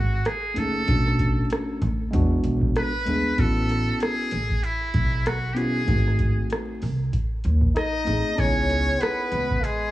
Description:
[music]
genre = hip hop, jazz-hop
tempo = 96 BPM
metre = 4/4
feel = swing 57% on 16ths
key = unclear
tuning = A4 = 441 Hz
[part]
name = trumpet with metal mute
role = melody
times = 0.0-9.9 s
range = E4 to D#5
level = -27 LUFS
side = right 1 dB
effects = cassette tape, analog delay
[part]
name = upright bass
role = bass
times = 0.0-9.6 s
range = F#1 to E2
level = -25 LUFS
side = equal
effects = none
[part]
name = booming analog drum machine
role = drums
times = 0.3-9.8 s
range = hi-hat, kick drum, rim click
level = -26 LUFS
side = equal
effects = vintage 12-bit sampler grit, cassette tape
[part]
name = tine electric piano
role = accompaniment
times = 0.5-9.3 s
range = G#3 to G#4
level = -27 LUFS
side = equal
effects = overdrive
[part]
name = bright trombone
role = second line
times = 7.8-9.9 s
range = G#3 to D#4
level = -28 LUFS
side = left 1 dB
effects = none
[sound]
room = light reverb, studio reverb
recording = home recording on cassette, vinyl crackle, small room ambience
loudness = -21 LUFS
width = side -15 dB against mid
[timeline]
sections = 0.0-9.9 A section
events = none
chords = 0.0 F#m69; 0.9 Bm7; 2.1 E7; 3.4 A69; 5.9 G#7b9; 8.4 C#m7

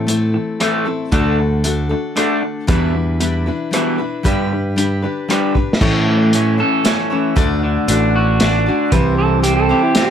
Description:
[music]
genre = folk rock and heartland rock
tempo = 115 BPM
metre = 3/4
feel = straight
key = unclear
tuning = A4 = 440 Hz
[part]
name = picked steel-string acoustic guitar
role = accompaniment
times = 0.0-10.1 s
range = A2 to D5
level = -20 LUFS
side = left 3 dB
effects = none
[part]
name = electric guitar through a small old amp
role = riff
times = 0.0-10.1 s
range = E2 to A4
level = -19 LUFS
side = right 1 dB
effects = none
[part]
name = picked electric bass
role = bass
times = 0.0-9.7 s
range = A1 to A2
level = -18 LUFS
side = right 1 dB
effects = none
[part]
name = vintage drum kit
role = drums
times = 0.1-10.1 s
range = crash cymbal, hi-hat, kick drum, rim click, snare drum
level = -19 LUFS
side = equal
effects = none
[part]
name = electric slide guitar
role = second line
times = 8.9-10.1 s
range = E4 to B4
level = -19 LUFS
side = right 6 dB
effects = none
[sound]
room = light reverb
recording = none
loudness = -14 LUFS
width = side -8 dB against mid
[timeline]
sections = 0.0-5.8 A section; 5.8-10.1 B section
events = drum fill 5.6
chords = 0.0 Am; 1.1 D; 2.7 Em7; 4.3 G; 5.8 A; 7.4 D; 8.9 C

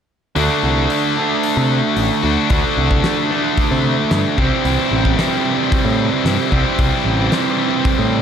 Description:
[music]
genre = classic rock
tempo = 112 BPM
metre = 4/4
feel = straight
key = D mixolydian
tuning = A4 = 440 Hz
[part]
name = distorted electric guitar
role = riff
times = 0.4-8.2 s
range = C3 to D4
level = -20 LUFS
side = right 10 dB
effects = distortion
[part]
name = tight distorted guitar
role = riff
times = 0.4-8.2 s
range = C3 to F#4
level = -18 LUFS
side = left 10 dB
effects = distortion
[part]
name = growling picked electric bass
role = bass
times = 0.4-8.2 s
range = A1 to C3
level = -19 LUFS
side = equal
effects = overdrive
[part]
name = big rock drum kit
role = drums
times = 0.4-8.0 s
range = hi-hat, kick drum, snare drum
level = -21 LUFS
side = equal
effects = none
[sound]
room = light reverb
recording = none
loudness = -14 LUFS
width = side -8 dB against mid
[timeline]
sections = 0.4-8.2 A section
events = none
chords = 0.4 D; 4.4 C

